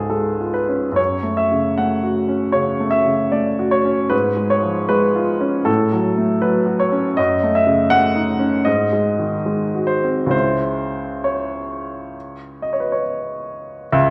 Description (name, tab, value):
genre	classical, romantic character piece for solo piano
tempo	65-82 BPM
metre	4/4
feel	rubato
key	F# minor, C# minor from 7.2 s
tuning	A4 = 441 Hz
part	clear upright piano	solo	0.0-14.1 s	C#2 to F#5	-19 LUFS	equal	none
room	wet recital hall reverb, RT60 1.4 s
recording	dark, warm production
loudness	-19 LUFS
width	mono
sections	0.0-13.9 A section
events	none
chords	0.0 C#; 1.0 F#m; 4.1 C#7/G#; 5.7 F#m/A; 7.2 D#m7b5/F#; 8.7 G#7; 10.3 C#m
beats	0.12 | 0.98 1.78 2.56 3.34 | 4.12 4.90 5.67 6.43 | 7.18 7.92 8.67 9.47 | 10.33 11.24 12.14 13.03 | 13.94